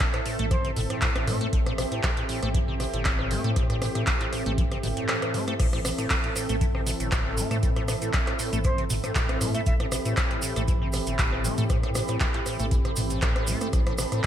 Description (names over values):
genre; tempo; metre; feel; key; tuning
acid house; 118 BPM; 4/4; swing 53% on 16ths; A minor; A4 = 445 Hz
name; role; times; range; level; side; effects
lush unison pad; sustained chords; 0.0-14.3 s; E3 to A4; -35 LUFS; right 1 dB; chorus, sidechain pumping
acid bass, square; riff; 0.0-14.3 s; A1 to A3; -33 LUFS; equal; overdrive, wide subtle chorus, ping-pong delay
booming analog drum machine; drums; 0.0-14.3 s; crash cymbal, handclaps, hi-hat, rim click, toms; -29 LUFS; right 1 dB; gated reverb
electronic kick drum; drums; 0.0-14.3 s; none; -26 LUFS; equal; none
warbly tape-like pad; texture; 0.0-14.3 s; C4 to B5; -34 LUFS; right 1 dB; chorus, built-in reverb, sidechain pumping
saturated sub bass; bass; 0.4-14.2 s; G1 to A2; -31 LUFS; equal; sidechain pumping
silver concert flute; melody; 0.5-0.7, 8.6-9.7 s; C5 to E5; -36 LUFS; equal; ping-pong delay
maracas; percussion; 5.6-14.3 s; none; -36 LUFS; right 3 dB; none
room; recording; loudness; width
light reverb; bright 1980s-style digital production; -23 LUFS; side -10 dB against mid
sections
0.0-14.3 A section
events
kick drops out 5.1-5.6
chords
0.0 Am